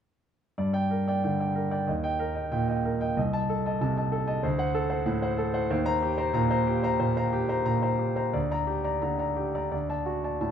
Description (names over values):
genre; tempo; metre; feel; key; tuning
classical, virtuoso piano study; 93 BPM; 4/4; uneven beats, rubato; G minor; A4 = 437 Hz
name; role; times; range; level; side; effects
clear grand piano; solo; 0.6-10.5 s; C2 to Bb5; -25 LUFS; equal; none
room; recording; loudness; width
moderate large studio reverb, RT60 1.1 s; minimal, uncompressed stereo recording; -25 LUFS; side -8 dB against mid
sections
0.6-10.5 A section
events
none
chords
0.6 Gm; 1.9 Eb; 3.2 Adim/C; 4.4 D7; 5.7 Eb6; 8.3 Gm/D; 9.7 D